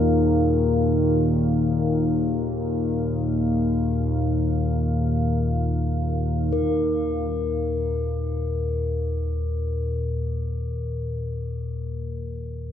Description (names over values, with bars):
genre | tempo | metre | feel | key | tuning
dark ambient drone | free time | none | none | unclear | A4 = 440 Hz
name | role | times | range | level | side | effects
deep dark ambient pad | sustained chords | 0.0-6.6 s | Eb4 to F5 | -26 LUFS | right 1 dB | chorus, built-in reverb
analog drone | drone | 0.0-12.7 s | Eb2 to Bb2 | -23 LUFS | left 1 dB | chorus
bronze singing bowl | texture | 0.0-12.7 s | Ab4 to Bb4 | -32 LUFS | left 5 dB | none
room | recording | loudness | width
wet cathedral reverb, RT60 5.9 s | in a vast, echoing space | -22 LUFS | side -9 dB against mid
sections
0.0-6.5 A section; 6.5-12.7 B section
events
filter sweep on synth drone 6.5-12.7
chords
0.0 Eb5